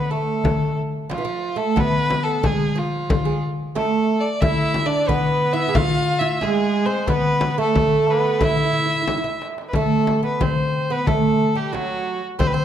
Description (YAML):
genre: Arabic maqam ensemble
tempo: 90 BPM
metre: 4/4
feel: straight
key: E maqam hijaz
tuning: A4 = 439 Hz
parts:
  - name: rich violin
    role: melody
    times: 0.0-12.6 s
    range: F4+25c to F5+25c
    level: -23 LUFS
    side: equal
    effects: none
  - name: oud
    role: second line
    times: 0.0-12.6 s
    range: E3 to G#4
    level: -24 LUFS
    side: right 6 dB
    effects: none
  - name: darbuka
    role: percussion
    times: 0.1-12.6 s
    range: none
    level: -24 LUFS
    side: left 3 dB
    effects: none
  - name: frame drum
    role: percussion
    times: 0.4-12.6 s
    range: none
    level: -25 LUFS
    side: left 2 dB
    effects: none
  - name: stopped French horn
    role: second line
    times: 4.4-9.4 s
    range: G#3 to F4+28c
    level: -26 LUFS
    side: left 3 dB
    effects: none
room: wet recital hall reverb, RT60 1.7 s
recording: dark, warm production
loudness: -18 LUFS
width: side -10 dB against mid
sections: 0.0-9.7 A section; 9.7-12.6 B section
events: drum fill 9.1-9.7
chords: none